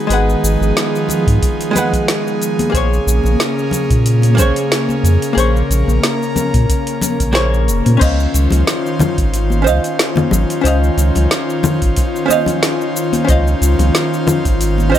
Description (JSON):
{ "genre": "sunset chillout", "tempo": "91 BPM", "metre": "4/4", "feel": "swing 54% on 16ths", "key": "Db major", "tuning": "A4 = 440 Hz", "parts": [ { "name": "archtop guitar, miked and amplified", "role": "accompaniment", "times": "0.0-15.0 s", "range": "Ab3 to Gb5", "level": "-20 LUFS", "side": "moving between left 5 dB and right 6 dB", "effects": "auto-pan, tape echo" }, { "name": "airy breathy pad", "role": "sustained chords", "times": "0.0-15.0 s", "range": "Db3 to C5", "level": "-18 LUFS", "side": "equal", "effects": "chorus" }, { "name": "warm sub bass", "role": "bass", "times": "0.1-15.0 s", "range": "F1 to Bb2", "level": "-14 LUFS", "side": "equal", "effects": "none" }, { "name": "smooth R&B drum kit", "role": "drums", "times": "0.1-15.0 s", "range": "cabasa, congas, crash cymbal, hi-hat, snare drum", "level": "-19 LUFS", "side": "left 1 dB", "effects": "none" }, { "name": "congas", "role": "percussion", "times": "1.1-14.9 s", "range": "none", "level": "-23 LUFS", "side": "left 4 dB", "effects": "none" }, { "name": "electronic kick drum", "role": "drums", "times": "1.3-14.6 s", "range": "none", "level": "-16 LUFS", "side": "equal", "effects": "none" } ], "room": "light reverb, digital ambience", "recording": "none", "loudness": "-12 LUFS", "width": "side -11 dB against mid", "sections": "0.0-8.0 A section; 8.0-15.0 B section", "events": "none", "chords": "0.0 Abm7; 2.7 Bbm9; 8.0 Dbmaj9" }